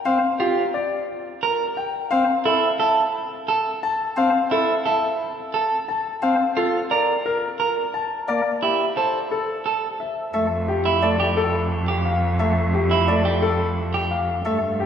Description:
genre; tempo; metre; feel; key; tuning
classical, minimalist pattern music; 175 BPM; 6/4; straight; F major from 10.3 s; A4 = 441 Hz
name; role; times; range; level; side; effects
clear concert grand piano; melody; 0.1-14.9 s; G4 to A5; -24 LUFS; left 5 dB; none
chamber organ, cornet; accompaniment; 0.1-14.6 s; A3 to C4; -28 LUFS; right 1 dB; none
clean electric guitar; arpeggios; 0.4-14.2 s; E4 to Bb4; -23 LUFS; right 4 dB; none
rich cello; bass; 10.3-14.9 s; F2 to G2; -23 LUFS; right 1 dB; none
room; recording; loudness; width
wet church reverb, RT60 3.5 s; recorded in a church or concert hall, lossy compression artefacts; -19 LUFS; side -8 dB against mid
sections
0.0-10.3 A section; 10.3-14.9 B section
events
none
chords
0.0 Gm7; 2.1 C6; 6.2 Bbmaj7(no3); 8.3 C13 (rootless); 10.3 Fmaj9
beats
| 0.05 0.40 0.74 1.08 1.43 1.77 | 2.11 2.45 2.80 3.14 3.48 3.83 | 4.17 4.51 4.85 5.20 5.54 5.88 | 6.23 6.57 6.91 7.25 7.60 7.94 | 8.28 8.63 8.97 9.31 9.65 10.00 | 10.34 10.68 11.03 11.37 11.71 12.05 | 12.40 12.74 13.08 13.43 13.77 14.11 | 14.45 14.80

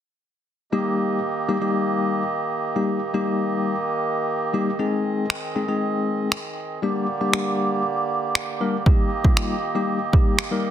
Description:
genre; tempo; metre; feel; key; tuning
dance-pop; 118 BPM; 4/4; straight; Eb major; A4 = 442 Hz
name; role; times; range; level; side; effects
tine electric piano; accompaniment; 0.7-10.7 s; G3 to Bb4; -24 LUFS; left 3 dB; medium tremolo, sidechain pumping
hand-pumped harmonium; sustained chords; 0.7-10.7 s; D3 to Eb5; -25 LUFS; right 3 dB; stereo widening, sidechain pumping
punchy analog drum machine; drums; 5.3-10.5 s; finger snaps, kick drum; -20 LUFS; right 1 dB; soft clipping on snare
room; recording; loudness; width
moderate plate reverb, RT60 1.2 s; dense, heavily limited modern master; -20 LUFS; side -10 dB against mid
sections
0.7-8.9 A section; 8.9-10.7 B section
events
none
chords
0.7 Eb; 4.8 Ab; 6.8 Gm; 8.9 Eb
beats
| 0.73 1.23 1.74 2.25 | 2.76 3.27 3.78 4.29 | 4.79 5.30 5.81 6.32 | 6.83 7.34 7.84 8.35 | 8.86 9.37 9.88 10.39

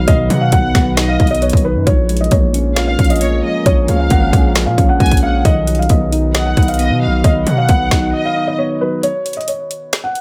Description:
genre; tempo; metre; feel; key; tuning
hip hop, trap; 134 BPM; 4/4; half-time; unclear; A4 = 442 Hz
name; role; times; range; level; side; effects
felt-muted upright piano; melody; 0.0-10.2 s; B4 to F#5; -22 LUFS; equal; low-pass filter, tape echo
warm studio violin section; second line; 0.0-8.6 s; C#5 to G#5; -26 LUFS; equal; tape echo
soft electric-piano-like synth keys; accompaniment; 0.0-9.1 s; B2 to D#5; -22 LUFS; equal; chorus, low-pass filter
deep dark ambient pad; sustained chords; 0.0-9.0 s; D#3 to B4; -29 LUFS; equal; none
distorted 808-style bass; bass; 0.0-8.1 s; G#1 to B2; -19 LUFS; equal; distortion
trap drum kit; drums; 0.1-10.2 s; finger snaps, hi-hat, kick drum, snare drum; -17 LUFS; equal; none
room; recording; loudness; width
digital ambience; none; -14 LUFS; mono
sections
0.0-9.0 A section; 9.0-10.2 B section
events
break 8.1-9.0, 9.0-10.2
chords
0.0 B; 1.9 A#m7; 5.5 B; 9.0 N.C.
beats
| 0.08 0.53 0.97 1.42 | 1.87 2.32 2.77 3.21 | 3.66 4.11 4.56 5.00 | 5.45 5.90 6.35 6.79 | 7.24 7.69 8.14 8.59 | 9.03 9.48 9.93

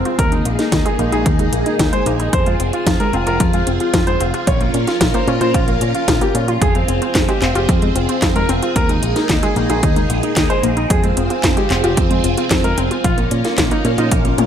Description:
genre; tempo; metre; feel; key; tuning
italo disco; 112 BPM; 4/4; straight; F minor; A4 = 439 Hz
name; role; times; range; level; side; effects
clear concert grand piano; melody; 0.0-14.4 s; Bb3 to Db5; -21 LUFS; right 2 dB; ping-pong delay
string machine, full ensemble; sustained chords; 0.0-14.5 s; Bb3 to Bb4; -21 LUFS; equal; phaser, ensemble chorus
warbly dusty pluck; arpeggios; 0.0-14.5 s; Eb3 to F4; -23 LUFS; left 3 dB; chorus, digital delay
picked electric bass with an envelope filter; bass; 0.0-14.5 s; F1 to Bb2; -20 LUFS; equal; none
house drum kit; drums; 0.1-14.5 s; handclaps, hi-hat, snare drum, toms; -21 LUFS; equal; overdrive
electronic kick drum; drums; 0.2-14.2 s; none; -19 LUFS; equal; overdrive
room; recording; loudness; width
light reverb; none; -14 LUFS; side -9 dB against mid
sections
0.0-14.5 A section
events
none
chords
0.2 Ebsus4; 2.3 Fm; 4.5 Bbm; 6.6 Fm; 8.8 Ebsus4; 10.9 Fm; 13.0 Bbm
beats
| 0.19 0.72 1.26 1.79 | 2.33 2.87 3.40 3.94 | 4.47 5.01 5.54 6.08 | 6.62 7.15 7.69 8.22 | 8.76 9.29 9.83 10.37 | 10.90 11.44 11.97 12.51 | 13.04 13.58 14.12

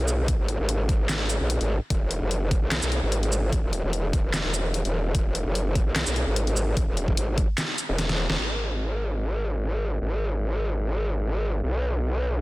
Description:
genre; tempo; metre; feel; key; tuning
heavy wobble dubstep; 148 BPM; 4/4; swing 54% on 16ths, half-time; unclear; A4 = 443 Hz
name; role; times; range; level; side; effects
growl bass; bass; 0.0-12.4 s; E1 to B1; -25 LUFS; equal; chorus, overdrive
dubstep drum kit; drums; 0.1-8.4 s; handclaps, hi-hat, shaker, snare drum; -28 LUFS; equal; none
electronic kick drum; drums; 0.3-7.5 s; none; -24 LUFS; equal; overdrive
room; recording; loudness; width
little or no reverb; dense, heavily limited modern master; -23 LUFS; side -20 dB against mid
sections
0.0-8.4 A section; 8.4-12.4 B section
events
drop 0.0-8.4; drum fill 8.0-8.4; band accent 8.3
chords
none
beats
| 0.28 0.69 1.09 1.50 | 1.90 2.31 2.71 3.12 | 3.52 3.93 4.34 4.74 | 5.15 5.55 5.96 6.36 | 6.77 7.17 7.58 7.99 | 8.39 8.79 9.20 9.61 | 10.01 10.42 10.82 11.23 | 11.63 12.04

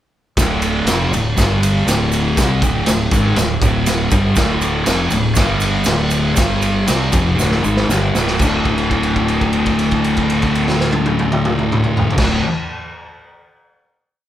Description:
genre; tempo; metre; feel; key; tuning
garage rock duo or trio; 119 BPM; 4/4; straight; unclear; A4 = 440 Hz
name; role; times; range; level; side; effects
thick fuzz guitar; riff; 0.4-12.4 s; D2 to C4; -16 LUFS; equal; distortion
growling fingered electric bass; bass; 0.4-12.4 s; D1 to C2; -23 LUFS; equal; overdrive
raw garage drum kit; drums; 0.4-12.3 s; crash cymbal, kick drum, ride cymbal, snare drum, toms; -18 LUFS; equal; none
egg shaker; percussion; 0.4-8.6 s; none; -30 LUFS; right 5 dB; none
room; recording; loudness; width
moderate large studio reverb, RT60 1.3 s; band playing live in one room; -14 LUFS; side -12 dB against mid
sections
0.4-8.4 riff; 8.4-12.5 final chord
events
drum fill 7.4-8.4; held note 8.4-12.2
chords
0.4 D5; 1.4 G5; 1.9 D5; 5.4 G5; 5.9 D5; 6.4 G5; 6.9 D5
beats
| 0.36 0.86 1.36 1.86 | 2.36 2.86 3.36 3.86 | 4.36 4.86 5.37 5.87 | 6.37 6.88 7.38 7.89 | 8.39 8.90 9.41 9.92 | 10.44 10.95 11.46 11.97

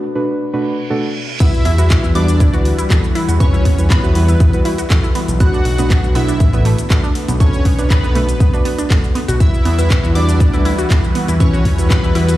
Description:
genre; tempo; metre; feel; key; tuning
progressive house; 120 BPM; 4/4; straight; unclear; A4 = 441 Hz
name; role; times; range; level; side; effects
deep mellow chord stab; stabs; 0.0-12.4 s; B2 to B4; -22 LUFS; right 2 dB; chorus, sidechain pumping, digital delay
reverse cymbal and sub drop; sound effects; 0.6-3.4 s; none; -27 LUFS; right 1 dB; none
soft supersaw; melody; 1.4-12.4 s; B3 to F#5; -24 LUFS; left 1 dB; digital delay
glassy wavetable pluck; second line; 1.4-12.4 s; B5 to F#6; -31 LUFS; left 1 dB; chorus, sidechain pumping
warm analog pad; sustained chords; 1.4-12.4 s; D3 to B4; -24 LUFS; left 1 dB; chorus, phaser, sidechain pumping
glassy wavetable pluck; arpeggios; 1.4-12.4 s; A3 to F#4; -25 LUFS; right 1 dB; chorus, sidechain pumping, digital delay
electronic kick drum; drums; 1.4-12.0 s; none; -13 LUFS; equal; high-pass filter on kick
pop drum kit; drums; 1.4-12.4 s; cabasa, crash cymbal, handclaps, hi-hat; -25 LUFS; equal; none
fat analog bass; bass; 1.7-12.4 s; F#1 to E2; -16 LUFS; equal; tube saturation, sidechain pumping
room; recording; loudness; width
little or no reverb; played on a big sound system in a bare room, large studio reverb; -12 LUFS; side -15 dB against mid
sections
0.0-1.4 A section; 1.4-12.4 B section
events
break 0.0-1.4; build-up 0.0-1.4; reverse cymbal 0.6-1.4; drop 1.4-12.4; impact 1.4-3.4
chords
0.0 Bm7; 1.4 Emadd9; 5.4 Bm7; 9.4 Emadd9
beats
0.40 0.90 | 1.40 1.90 2.40 2.90 | 3.40 3.90 4.40 4.90 | 5.40 5.90 6.40 6.90 | 7.40 7.90 8.40 8.90 | 9.40 9.90 10.40 10.90 | 11.40 11.90

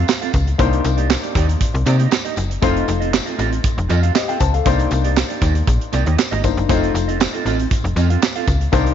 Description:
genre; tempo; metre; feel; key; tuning
early-eighties boogie funk; 118 BPM; 4/4; straight; unclear; A4 = 439 Hz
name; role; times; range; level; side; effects
dark baby grand piano; accompaniment; 0.0-8.9 s; A3 to A5; -23 LUFS; left 12 dB; none
mellow electric guitar; riff; 0.0-8.9 s; Bb3 to F5; -24 LUFS; right 10 dB; wide subtle chorus
slap-like FM bass; bass; 0.0-8.9 s; F1 to C3; -18 LUFS; left 1 dB; none
modern studio drum kit; drums; 0.1-8.9 s; handclaps, hi-hat, kick drum, snare drum; -20 LUFS; right 2 dB; none
tambourine; percussion; 0.1-8.9 s; none; -33 LUFS; left 13 dB; none
room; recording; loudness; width
light reverb, studio reverb; 1960s-style stereo with parts hard left and right, nothing above 7.5 kHz; -15 LUFS; side -9 dB against mid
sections
0.0-8.9 A section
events
none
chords
0.0 F7; 0.6 Cm9; 2.6 F7; 4.7 Cm9; 6.7 F7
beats
0.09 | 0.59 1.10 1.61 2.12 | 2.63 3.13 3.64 4.15 | 4.66 5.17 5.68 6.19 | 6.70 7.20 7.71 8.22 | 8.73

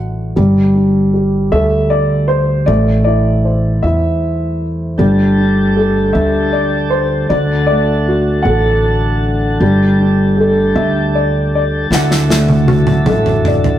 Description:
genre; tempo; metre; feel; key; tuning
six-eight pop ballad; 52 BPM (dotted quarters); 6/8; straight; unclear; A4 = 439 Hz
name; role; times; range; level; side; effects
warm baby grand piano; melody; 0.0-13.8 s; C5 to F#5; -19 LUFS; left 1 dB; none
dark upright piano; accompaniment; 0.0-13.8 s; D3 to C5; -15 LUFS; equal; none
upright bass; bass; 0.0-13.8 s; G1 to E2; -16 LUFS; equal; none
tonewheel organ; sustained chords; 5.0-13.8 s; D3 to A4; -18 LUFS; left 1 dB; slow rotary speaker
modern studio drum kit; drums; 11.9-13.8 s; snare drum, toms; -15 LUFS; equal; none
room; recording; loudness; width
wet stone room reverb, RT60 1.4 s; rough rehearsal-room recording, tube saturation; -11 LUFS; side -12 dB against mid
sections
0.0-13.8 A section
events
drum fill 11.9-13.8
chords
0.4 Gsus2; 2.7 Am; 5.0 Gsus2; 7.3 D; 9.6 Gsus2; 11.9 Dadd9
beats
| 0.37 1.52 | 2.68 3.83 | 4.99 6.14 | 7.30 8.45 | 9.61 10.76 | 11.91 13.07

